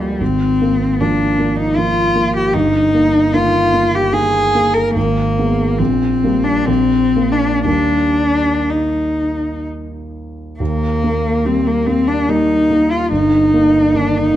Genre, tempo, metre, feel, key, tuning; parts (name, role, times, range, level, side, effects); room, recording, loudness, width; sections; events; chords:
classical, romantic duo for cello and grand piano; 57-79 BPM; 3/4; rubato; Eb major; A4 = 438 Hz
rich cello; melody; 0.0-14.4 s; G3 to Bb4; -14 LUFS; left 1 dB
warm concert grand piano; accompaniment; 0.0-14.4 s; G1 to Cb4; -18 LUFS; right 2 dB
moderate recital hall reverb, RT60 1.4 s; dark, warm production; -13 LUFS; side -12 dB against mid
0.0-10.6 A section; 10.6-14.4 A section
0.2 Bb5/Ab; 2.5 Eb/G; 5.0 Abm; 5.8 Bb69; 6.7 N.C.; 7.7 Eb; 13.1 Eb/G